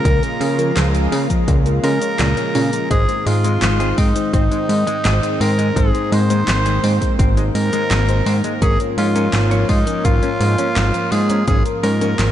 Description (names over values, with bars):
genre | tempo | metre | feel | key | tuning
synthwave | 84 BPM | 4/4 | straight | Db major | A4 = 440 Hz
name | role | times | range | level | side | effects
raspy tenor saxophone | melody | 0.0-12.3 s | Eb4 to C5 | -22 LUFS | equal | tape echo
lush unison pad | sustained chords | 0.0-12.3 s | Db3 to F4 | -24 LUFS | right 1 dB | chorus, sidechain pumping
analog pluck | arpeggios | 0.0-2.8 s | Bb2 to Ab3 | -26 LUFS | right 2 dB | chorus, vintage 12-bit sampler grit, digital delay
FM electric piano with soft pad layer | stabs | 0.0-12.2 s | Ab2 to Eb5 | -25 LUFS | left 4 dB | chorus, phaser
fat analog bass | bass | 0.0-12.3 s | Ab1 to Db3 | -17 LUFS | equal | none
electronic kick drum | drums | 0.1-11.6 s | none | -18 LUFS | equal | none
pop drum kit | drums | 0.1-12.3 s | cabasa, handclaps, hi-hat, snare drum | -25 LUFS | equal | none
semi-hollow electric guitar | riff | 2.9-12.1 s | Ab3 to Db5 | -29 LUFS | left 1 dB | lush chorus, digital delay
room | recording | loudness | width
light reverb, digital ambience | dark, warm production, nothing above 10.6 kHz | -14 LUFS | side -11 dB against mid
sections
0.0-12.3 A section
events
none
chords
0.0 Db6; 2.9 Ab; 8.6 Db6/Ab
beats
| 0.05 0.76 1.48 2.19 | 2.91 3.62 4.33 5.05 | 5.76 6.48 7.19 7.91 | 8.62 9.33 10.05 10.76 | 11.48 12.19